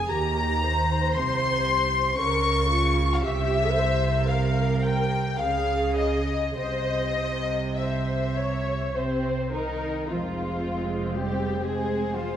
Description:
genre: classical, slow romantic movement for string orchestra.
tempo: 49-61 BPM.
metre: 3/4.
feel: rubato.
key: unclear.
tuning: A4 = 440 Hz.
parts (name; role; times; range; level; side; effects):
warm symphonic violin section; melody; 0.0-12.4 s; C5 to Db6; -29 LUFS; left 5 dB; none.
dark studio violin section; second line; 0.0-12.4 s; C4 to Db6; -30 LUFS; left 2 dB; none.
dark symphonic viola section; accompaniment; 0.0-12.4 s; Ab3 to Db5; -30 LUFS; right 1 dB; none.
warm studio cello section; bass; 0.0-12.4 s; F2 to Ab3; -30 LUFS; right 3 dB; none.
warm symphonic double bass section; bass; 0.0-12.4 s; F1 to Eb2; -29 LUFS; right 2 dB; none.
room: moderate concert hall reverb, RT60 2.4 s.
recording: none.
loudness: -23 LUFS.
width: side -10 dB against mid.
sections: 0.0-10.1 A section; 10.1-12.4 B section.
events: none.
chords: 0.1 Cm/Eb; 2.2 Bbm/Db; 3.2 C; 5.4 Db; 6.6 C; 10.1 Fm.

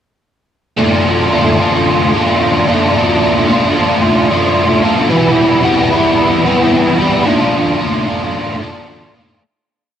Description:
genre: rock.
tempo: 111 BPM.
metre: 4/4.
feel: straight.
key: D dorian.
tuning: A4 = 440 Hz.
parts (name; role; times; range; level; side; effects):
biting overdriven guitar; solo; 0.8-9.4 s; E2 to F4; -10 LUFS; equal; ensemble chorus.
room: light reverb.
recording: dark, warm production.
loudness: -10 LUFS.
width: side -9 dB against mid.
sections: 0.8-9.4 A section.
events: fade-out 7.3-9.4.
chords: 0.8 Dm; 5.1 Em; 7.3 Dm.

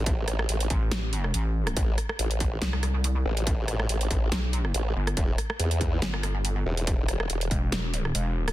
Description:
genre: heavy wobble dubstep.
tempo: 141 BPM.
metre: 4/4.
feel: swing 54% on 16ths, half-time.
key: A minor.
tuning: A4 = 441 Hz.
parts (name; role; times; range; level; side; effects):
formant-sweep wobble bass; bass; 0.0-7.5 s; E1 to E2; -27 LUFS; equal; chorus, overdrive.
dubstep drum kit; drums; 0.1-8.5 s; hi-hat, rim click, snare drum; -31 LUFS; right 1 dB; soft clipping on snare.
electronic kick drum; drums; 0.1-7.6 s; none; -28 LUFS; equal; distortion.
pulsing pluck wobble bass; bass; 0.7-8.5 s; E1 to C2; -26 LUFS; equal; distortion, chorus, overdrive.
room: little or no reverb.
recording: dense, heavily limited modern master.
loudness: -24 LUFS.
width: side -15 dB against mid.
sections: 0.0-8.5 A section.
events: none.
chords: 0.0 Am; 5.2 Em.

